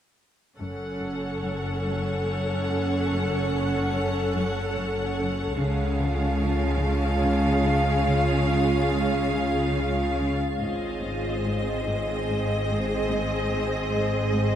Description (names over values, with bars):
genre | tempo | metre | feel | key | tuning
cinematic | 72 BPM | 3/4 | straight | F# dorian | A4 = 442 Hz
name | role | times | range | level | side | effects
rich studio violin section | melody | 0.6-14.6 s | D#5 to F#5 | -31 LUFS | left 1 dB | none
rich studio viola section | accompaniment | 0.6-14.6 s | G#3 to A4 | -28 LUFS | right 2 dB | none
icy glass pad | sustained chords | 1.2-14.6 s | E#4 to F#5 | -32 LUFS | right 1 dB | chorus, built-in reverb
rich studio cello section | riff | 0.6-14.6 s | F#2 to C#3 | -33 LUFS | left 2 dB | none
clear studio cello section | bass | 0.6-14.6 s | F#2 to C#3 | -32 LUFS | left 1 dB | none
rich studio double bass section | bass | 0.6-14.6 s | F#1 to C#2 | -29 LUFS | equal | none
clear studio violin section | texture | 5.6-10.1 s | G#5 to D#6 | -41 LUFS | equal | none
room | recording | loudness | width
wet cathedral reverb, RT60 6.4 s | in a vast, echoing space | -23 LUFS | side -10 dB against mid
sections
0.6-14.6 A section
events
none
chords
0.6 F#m; 5.6 C#; 10.6 G#